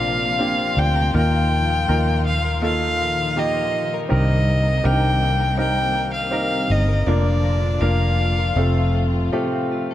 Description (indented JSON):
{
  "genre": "pop ballad",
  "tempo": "81 BPM",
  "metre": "4/4",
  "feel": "straight",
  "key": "Bb major",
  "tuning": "A4 = 440 Hz",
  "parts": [
    { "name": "rich violin", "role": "melody", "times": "0.0-8.9 s", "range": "D5 to G5", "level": "-23 LUFS", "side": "left 1 dB", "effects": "tape echo" },
    { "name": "clear baby grand piano", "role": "accompaniment", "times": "0.0-9.9 s", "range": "G2 to Bb4", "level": "-24 LUFS", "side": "right 1 dB", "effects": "none" },
    { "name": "warm studio string section", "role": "sustained chords", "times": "0.0-9.9 s", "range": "A2 to F4", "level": "-28 LUFS", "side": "left 1 dB", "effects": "none" },
    { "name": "direct-recorded clean electric guitar", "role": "arpeggios", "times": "0.0-9.9 s", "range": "Bb2 to Bb4", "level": "-31 LUFS", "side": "left 8 dB", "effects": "none" },
    { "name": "vintage muted fingered electric bass", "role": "bass", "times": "0.0-9.3 s", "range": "F1 to Eb2", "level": "-20 LUFS", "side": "equal", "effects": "none" }
  ],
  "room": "light reverb, small room ambience",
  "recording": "none",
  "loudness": "-17 LUFS",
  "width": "side -12 dB against mid",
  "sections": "0.0-9.9 A section",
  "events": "none",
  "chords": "0.0 Bbadd9; 1.1 Ebsus2; 4.1 Cm7; 7.1 Bb/F; 8.6 F"
}